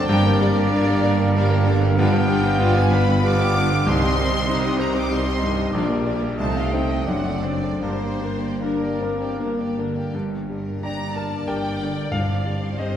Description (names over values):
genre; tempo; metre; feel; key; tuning
classical; 74-98 BPM; 3/4; rubato; G minor; A4 = 443 Hz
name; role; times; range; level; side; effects
clear grand piano; melody; 0.0-13.0 s; Bb1 to Bb5; -24 LUFS; left 1 dB; none
rich symphonic violin section; melody; 0.0-13.0 s; Bb4 to D6; -32 LUFS; left 2 dB; none
mellow cor anglais; second line; 0.0-9.8 s; D5 to F5; -31 LUFS; right 1 dB; none
small flute group; second line; 0.0-9.4 s; Bb4 to D6; -32 LUFS; equal; none
warm symphonic violin section; second line; 0.0-13.0 s; Eb4 to Bb5; -31 LUFS; left 2 dB; none
rich symphonic viola section; accompaniment; 0.0-13.0 s; Eb3 to D5; -30 LUFS; equal; none
warm bassoon; accompaniment; 0.0-9.7 s; G3 to C4; -30 LUFS; right 3 dB; none
mellow French horn section; sustained chords; 0.0-13.0 s; G3 to F4; -29 LUFS; left 4 dB; none
bright studio cello section; bass; 0.0-13.0 s; F#2 to C3; -26 LUFS; right 3 dB; none
clear symphonic double bass section; bass; 0.0-13.0 s; F#1 to C2; -27 LUFS; right 2 dB; none
timpani; percussion; 12.1-13.0 s; G2; -29 LUFS; left 2 dB; none
room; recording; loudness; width
wet scoring stage reverb, RT60 1.7 s; heard from further back in the room; -19 LUFS; side -9 dB against mid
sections
0.0-10.1 A section; 10.1-13.0 B section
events
none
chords
0.1 Gm; 2.0 G7; 3.9 Cm; 5.7 Gm/Bb; 6.4 Adim/C; 7.1 D7/F#; 7.8 Gm; 12.1 Cm/G